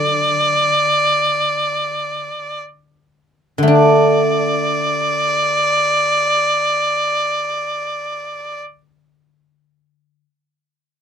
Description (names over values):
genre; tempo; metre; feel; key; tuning
chinese traditional, Chinese chamber ensemble; free time; none; none; D gong mode; A4 = 442 Hz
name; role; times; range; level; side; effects
clear erhu; melody; 0.0-8.6 s; D5; -16 LUFS; equal; none
guzheng; accompaniment; 0.0-10.2 s; D3 to D4; -17 LUFS; equal; none
room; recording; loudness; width
light reverb; close, detailed microphones; -14 LUFS; side -8 dB against mid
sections
0.0-3.7 A section; 3.7-8.1 B section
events
slowing down 0.0-3.7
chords
none